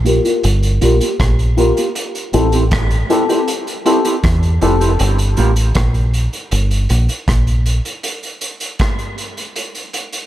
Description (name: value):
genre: dub reggae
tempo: 79 BPM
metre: 4/4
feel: straight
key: G dorian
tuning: A4 = 440 Hz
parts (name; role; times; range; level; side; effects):
- mellow electric guitar; accompaniment; 0.0-5.5 s; Bb3 to G4; -20 LUFS; right 3 dB; low-pass filter, dub echo
- dark upright piano; stabs; 0.0-4.8 s; C4 to Bb4; -18 LUFS; left 4 dB; low-pass filter, dub echo
- deep dub fingered electric bass; bass; 0.0-7.8 s; F1 to E2; -14 LUFS; equal; none
- vintage drum kit; drums; 0.1-10.3 s; hi-hat, kick drum, rim click; -20 LUFS; right 1 dB; none
room: light reverb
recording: none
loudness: -13 LUFS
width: side -13 dB against mid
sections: 0.0-10.3 A section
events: break 5.0-10.3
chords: 0.0 Gm7; 2.0 Am7; 5.0 Gm; 8.0 N.C.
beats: 0.43 1.19 | 1.95 2.71 3.48 4.24 | 5.00 5.76 6.52 7.28 | 8.04 8.80 9.56